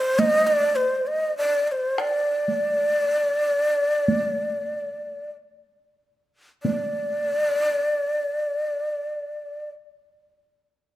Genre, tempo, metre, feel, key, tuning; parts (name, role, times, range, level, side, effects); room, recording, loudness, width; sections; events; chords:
japanese traditional, Japanese chamber music; 45-71 BPM; 4/4; rubato; A4 = 439 Hz
breathy mellow shakuhachi; melody; 0.0-9.7 s; C5 to Eb5; -22 LUFS; equal
taiko ensemble; percussion; 0.2-7.3 s; -27 LUFS; right 2 dB
moderate recital hall reverb, RT60 1.8 s; -21 LUFS; side -15 dB against mid
0.0-6.6 A section; 6.6-11.0 B section
slowing down 0.0-6.6